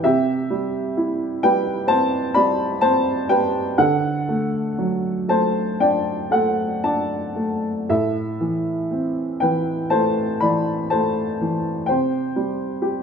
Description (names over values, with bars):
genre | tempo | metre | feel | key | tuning
classical, lyrical solo piano | 57-66 BPM | 4/4 | rubato | unclear | A4 = 441 Hz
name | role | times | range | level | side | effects
dark upright piano | solo | 0.0-13.0 s | A2 to B5 | -19 LUFS | equal | none
room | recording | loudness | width
moderate recital hall reverb, RT60 1.5 s | minimal, uncompressed stereo recording | -19 LUFS | side -6 dB against mid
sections
0.0-13.0 A section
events
none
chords
0.0 C; 3.8 D; 7.9 Amadd9; 11.9 C5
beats
| 0.03 0.95 1.88 2.81 | 3.78 4.78 5.80 6.83 | 7.88 8.91 9.91 10.91 | 11.88 12.81